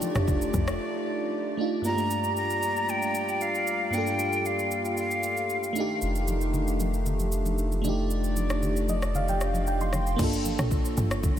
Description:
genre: amapiano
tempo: 115 BPM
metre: 4/4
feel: straight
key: G minor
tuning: A4 = 440 Hz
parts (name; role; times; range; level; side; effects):
- FM electric piano with soft pad layer; accompaniment; 0.0-11.4 s; G2 to C6; -30 LUFS; right 1 dB; chorus
- warm brass ensemble; sustained chords; 0.0-10.2 s; Eb3 to D5; -34 LUFS; left 2 dB; sidechain pumping
- deep house drum kit; drums; 0.0-11.4 s; crash cymbal, kick drum, rim click, shaker; -33 LUFS; equal; none
- congas; percussion; 0.0-0.7, 6.3-11.4 s; none; -36 LUFS; left 2 dB; none
- woody log drum bass; bass; 0.2-0.8, 10.2-11.4 s; F1 to Bb1; -28 LUFS; equal; none
- breathy jazz flute; melody; 1.9-5.7 s; F5 to Bb5; -29 LUFS; equal; ping-pong delay
- warm sub bass; bass; 6.0-10.2 s; F1; -28 LUFS; equal; none
room: moderate huge ambient reverb, RT60 4.7 s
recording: dreamy mix soaked in reverb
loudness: -25 LUFS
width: side -10 dB against mid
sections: 0.0-1.8 A section; 1.8-10.2 B section; 10.2-11.4 A section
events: drop 0.0-1.8, 10.2-11.4; break 0.8-1.8; FM electric piano fill 8.6-10.2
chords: 0.0 F13; 1.8 Gm9; 5.8 F13; 10.2 Gm9

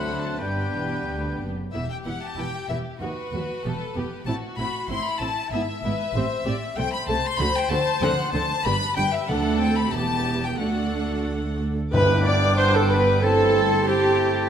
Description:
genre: quick classical-period movement for symphony orchestra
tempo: 94 BPM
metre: 2/4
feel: rubato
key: E minor, G major from 6.8 s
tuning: A4 = 439 Hz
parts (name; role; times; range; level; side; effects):
- rich chamber violin section; melody; 0.0-14.5 s; B4 to D6; -29 LUFS; left 4 dB; none
- clear clarinet; second line; 0.0-1.4, 11.9-14.5 s; D4 to E4; -31 LUFS; equal; none
- clear oboe; second line; 0.0-1.4, 11.9-14.5 s; B4 to A5; -32 LUFS; equal; none
- silver concert flute; second line; 0.0-1.4, 11.9-14.5 s; G5 to G6; -31 LUFS; left 4 dB; none
- warm chamber violin section; second line; 0.0-14.5 s; E4 to F#5; -32 LUFS; left 4 dB; none
- warm bassoon; accompaniment; 0.0-1.4, 11.9-14.5 s; G3 to C4; -31 LUFS; equal; none
- warm chamber viola section; accompaniment; 0.0-14.5 s; A3 to D5; -27 LUFS; right 2 dB; none
- warm French horn section; sustained chords; 0.0-1.4, 11.9-14.5 s; F#3 to C4; -31 LUFS; left 5 dB; none
- dark chamber cello section; bass; 0.0-14.5 s; D2 to D3; -29 LUFS; right 2 dB; none
- dark chamber double bass section; bass; 0.0-14.5 s; E1 to D#2; -30 LUFS; right 2 dB; none
- timpani; percussion; 8.0-9.9, 11.9-12.9 s; G2 to D3; -28 LUFS; left 1 dB; none
- clear trumpet section; stabs; 11.9-14.5 s; G4 to D5; -26 LUFS; right 1 dB; none
room: wet scoring stage reverb, RT60 1.5 s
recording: none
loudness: -21 LUFS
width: side -8 dB against mid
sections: 0.0-1.7 A section; 1.7-11.9 B section; 11.9-14.5 C section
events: none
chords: 0.4 G; 1.7 Em; 3.0 B/D#; 3.6 Em; 4.3 Am; 5.5 E/G#; 6.1 Am7; 6.8 Am/C; 7.4 D; 8.0 D7; 8.7 G; 9.3 D; 9.9 Em; 10.6 D; 11.9 G; 13.2 Am7/G

